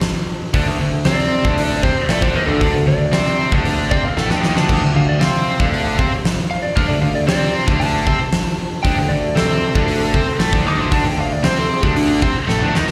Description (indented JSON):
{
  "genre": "quiet-loud alternative rock",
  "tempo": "115 BPM",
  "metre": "4/4",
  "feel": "straight",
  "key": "D minor",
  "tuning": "A4 = 442 Hz",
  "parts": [
    { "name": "huge arena drum kit", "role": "drums", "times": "0.0-12.9 s", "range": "crash cymbal, hi-hat, kick drum, snare drum", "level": "-22 LUFS", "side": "equal", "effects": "none" },
    { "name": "distorted electric guitar", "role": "riff", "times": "0.5-12.9 s", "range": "D3 to C5", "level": "-29 LUFS", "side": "equal", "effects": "none" },
    { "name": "scooped high-gain guitar", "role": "riff", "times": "0.5-12.9 s", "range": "D3 to C5", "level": "-25 LUFS", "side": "equal", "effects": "distortion, slapback echo" },
    { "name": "tight distorted guitar", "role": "riff", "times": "0.5-12.9 s", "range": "D3 to C5", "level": "-27 LUFS", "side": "equal", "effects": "distortion, slapback echo" },
    { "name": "overdriven picked electric bass", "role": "bass", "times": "0.5-12.9 s", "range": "D2 to C3", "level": "-23 LUFS", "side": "equal", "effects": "none" },
    { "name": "lightly driven lead guitar", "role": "melody", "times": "1.1-12.2 s", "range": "D4 to D6", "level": "-25 LUFS", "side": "equal", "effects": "slapback echo, tape echo" }
  ],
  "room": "small room reverb",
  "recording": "live gig heard through the venue's PA, recital hall reverb",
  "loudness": "-17 LUFS",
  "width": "mono",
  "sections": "0.0-12.9 A section",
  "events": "lead electric guitar solo 0.0-12.9; drum fill 4.2-4.7, 12.5-12.9",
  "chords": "0.0 D5",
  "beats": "0.02 | 0.54 1.05 1.57 2.09 | 2.61 3.13 3.65 4.17 | 4.69 5.21 5.73 6.25 | 6.77 7.29 7.81 8.33 | 8.85 9.37 9.89 10.41 | 10.93 11.45 11.97 12.49"
}